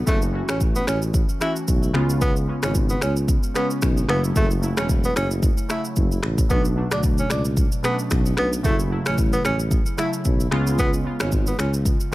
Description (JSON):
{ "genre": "afrobeats", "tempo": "112 BPM", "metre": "4/4", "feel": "swing 55% on 16ths", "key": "F# minor", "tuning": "A4 = 440 Hz", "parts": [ { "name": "glassy digital keys", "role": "accompaniment", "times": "0.0-12.1 s", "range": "B2 to F#4", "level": "-26 LUFS", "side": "equal", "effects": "chorus" }, { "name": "mellow tuba", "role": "bass", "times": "0.0-11.9 s", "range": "E1 to D2", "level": "-24 LUFS", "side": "equal", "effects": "none" }, { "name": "breathy tenor saxophone", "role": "melody", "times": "0.1-11.7 s", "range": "A3 to E4", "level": "-27 LUFS", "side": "right 1 dB", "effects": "digital delay" }, { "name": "afro-pop drum kit", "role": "drums", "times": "0.1-12.1 s", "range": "finger snaps, kick drum, rim click, shaker", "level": "-22 LUFS", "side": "equal", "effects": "none" } ], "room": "digital ambience", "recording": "none", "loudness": "-19 LUFS", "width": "side -18 dB against mid", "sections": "0.0-12.1 A section", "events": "none", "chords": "0.1 F#m7; 1.9 C#7; 4.1 F#m7; 6.5 Bm7; 8.6 F#m7; 10.5 C#7", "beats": "| 0.07 0.61 1.14 1.68 | 2.21 2.75 3.29 3.82 | 4.36 4.89 5.43 5.96 | 6.50 7.04 7.57 8.11 | 8.64 9.18 9.71 10.25 | 10.79 11.32 11.86" }